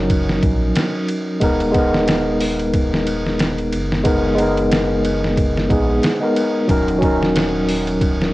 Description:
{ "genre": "trip hop", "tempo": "91 BPM", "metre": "4/4", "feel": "swing 57% on 16ths", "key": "unclear", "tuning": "A4 = 438 Hz", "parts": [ { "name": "overdriven tine electric piano", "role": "accompaniment", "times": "0.0-8.3 s", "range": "Gb3 to Bb4", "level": "-17 LUFS", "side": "equal", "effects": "harmonic tremolo, tape echo" }, { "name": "round analog bass", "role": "bass", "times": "0.0-8.3 s", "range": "Eb1 to Bb1", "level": "-24 LUFS", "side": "equal", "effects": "none" }, { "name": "trip hop sampler-style drum kit", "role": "drums", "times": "0.1-8.3 s", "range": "hi-hat, kick drum, ride cymbal, snare drum", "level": "-21 LUFS", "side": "equal", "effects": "cassette tape" } ], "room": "digital ambience", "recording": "home recording on cassette", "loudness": "-15 LUFS", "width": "side -18 dB against mid", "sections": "0.0-8.3 A section", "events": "none", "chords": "0.0 Ebm7; 1.4 Abmadd9/Eb; 6.7 Ebm7" }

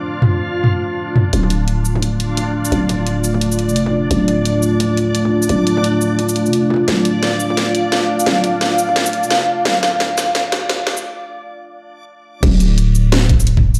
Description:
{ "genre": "half-time drum and bass", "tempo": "173 BPM", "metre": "4/4", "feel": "swing 60% on 16ths, half-time", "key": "D minor", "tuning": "A4 = 440 Hz", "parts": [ { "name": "dark analog pad", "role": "sustained chords", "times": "0.0-12.4 s", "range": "A3 to F5", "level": "-20 LUFS", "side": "equal", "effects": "chorus, sidechain pumping" }, { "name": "backwards swelling texture", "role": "texture", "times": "0.0-11.0 s", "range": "D4 to D5", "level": "-27 LUFS", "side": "equal", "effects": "built-in reverb" }, { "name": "drum and bass drum kit", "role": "drums", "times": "0.2-13.8 s", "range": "crash cymbal, hi-hat, shaker, snare drum, toms", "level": "-21 LUFS", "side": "equal", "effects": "high-pass filter on toms, small room ambience, high-pass filter on hats, high-pass filter on perc, high-pass filter on snare, high-pass filter on cymbals" }, { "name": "growling 808-style bass", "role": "bass", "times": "1.3-13.8 s", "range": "D1 to F1", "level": "-20 LUFS", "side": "equal", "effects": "none" }, { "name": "electronic kick drum", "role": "drums", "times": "12.4-13.6 s", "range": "none", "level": "-17 LUFS", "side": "equal", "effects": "small room ambience" } ], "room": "moderate digital room reverb, RT60 1.1 s", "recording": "played on a big sound system in a bare room, large studio reverb, high-pass filter", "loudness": "-16 LUFS", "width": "mono", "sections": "0.0-1.3 A section; 1.3-12.4 B section; 12.4-13.8 C section", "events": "build-up 1.3-12.4; filter sweep 1.3-12.4; drum fill 6.9-11.0; break 11.0-12.4; drop 12.4-13.8", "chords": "0.0 Dm; 12.4 N.C." }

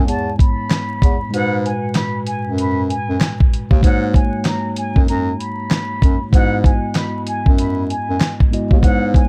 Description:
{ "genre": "hip hop, boom-bap hip-hop", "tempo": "96 BPM", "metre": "4/4", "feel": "swing 63% on 16ths", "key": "unclear", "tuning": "A4 = 436 Hz", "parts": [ { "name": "trumpet with plunger mute", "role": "melody", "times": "0.0-9.3 s", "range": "F#5 to B5", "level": "-28 LUFS", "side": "equal", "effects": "high-pass filter, low-pass filter, analog delay" }, { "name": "mellow tine electric piano", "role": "accompaniment", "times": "0.0-9.3 s", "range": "G#2 to D#5", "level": "-25 LUFS", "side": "equal", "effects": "high-pass filter, low-pass filter, analog delay" }, { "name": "warm bass clarinet", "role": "bass", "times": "0.0-9.2 s", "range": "D#2 to G#2", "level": "-23 LUFS", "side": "equal", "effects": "none" }, { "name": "dusty soul sampler-style drum kit", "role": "drums", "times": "0.1-9.3 s", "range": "handclaps, hi-hat, kick drum, snare drum", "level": "-16 LUFS", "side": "equal", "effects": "none" } ], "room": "little or no reverb", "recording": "echo-heavy mix, vinyl crackle", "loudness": "-17 LUFS", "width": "mono", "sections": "0.0-9.3 A section", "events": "break 1.3-2.6", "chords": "0.0 E6; 1.3 G#m9; 3.8 Bmaj9; 6.3 Emaj9" }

